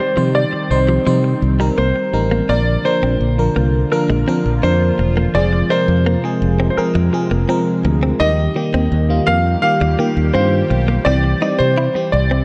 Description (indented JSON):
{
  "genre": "pop",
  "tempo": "84 BPM",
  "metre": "4/4",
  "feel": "straight",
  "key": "unclear",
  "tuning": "A4 = 439 Hz",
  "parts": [
    { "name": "clear grand piano", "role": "melody", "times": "0.0-12.4 s", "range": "Bb4 to F5", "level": "-22 LUFS", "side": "equal", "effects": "none" },
    { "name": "FM electric piano", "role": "accompaniment", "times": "0.0-12.4 s", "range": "Eb3 to C5", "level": "-23 LUFS", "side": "equal", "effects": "chorus, phaser" },
    { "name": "sweeping resonant pad", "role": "sustained chords", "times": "0.0-12.4 s", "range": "C3 to G4", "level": "-27 LUFS", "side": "equal", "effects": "chorus" },
    { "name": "direct-recorded clean electric guitar", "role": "riff", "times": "0.0-12.4 s", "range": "F3 to E4", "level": "-26 LUFS", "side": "equal", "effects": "analog chorus, tape echo" },
    { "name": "fingered electric bass", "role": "bass", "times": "0.2-12.4 s", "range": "E1 to C3", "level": "-19 LUFS", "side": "equal", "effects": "none" }
  ],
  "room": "moderate lush hall reverb, RT60 3.0 s",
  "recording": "dark, warm production",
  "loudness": "-16 LUFS",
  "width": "mono",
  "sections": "0.0-2.5 A section; 2.5-12.4 B section",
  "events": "none",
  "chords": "0.0 Cm; 2.5 Bb; 5.3 Fm; 8.2 Eb; 11.1 C"
}